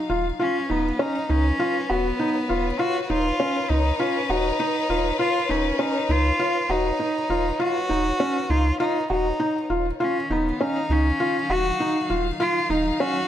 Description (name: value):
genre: piano and strings electronica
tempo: 100 BPM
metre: 4/4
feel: straight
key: unclear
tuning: A4 = 440 Hz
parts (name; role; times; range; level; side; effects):
- rich cello; melody; 0.0-13.3 s; B3 to Gb4; -26 LUFS; equal; none
- rich chamber string section; sustained chords; 0.0-13.3 s; Eb3 to F5; -31 LUFS; left 4 dB; none
- felt-muted upright piano; riff; 0.1-13.2 s; C#4 to F#4; -24 LUFS; equal; none
- warm sub bass; bass; 0.1-12.9 s; Eb1 to C#2; -25 LUFS; equal; none
room: moderate recital hall reverb, RT60 1.5 s, small room ambience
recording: none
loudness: -20 LUFS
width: side -11 dB against mid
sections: 0.0-13.3 A section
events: none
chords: 0.4 Badd9/D#; 10.0 Ebmadd9